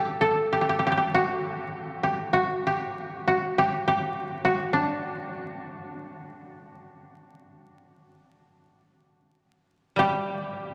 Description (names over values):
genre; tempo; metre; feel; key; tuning
japanese traditional; 51 BPM; 4/4; rubato; D ryukyu; A4 = 441 Hz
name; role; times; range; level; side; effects
koto; melody; 0.0-10.7 s; D4 to A4; -27 LUFS; equal; none
koto; accompaniment; 10.0-10.7 s; G3; -32 LUFS; equal; none
room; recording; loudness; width
wet cathedral reverb, RT60 5.9 s; vinyl crackle; -26 LUFS; mono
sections
0.0-10.7 A section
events
none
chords
none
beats
1.13 2.34 3.55 | 4.71 5.86 7.02 8.19 | 9.38 10.58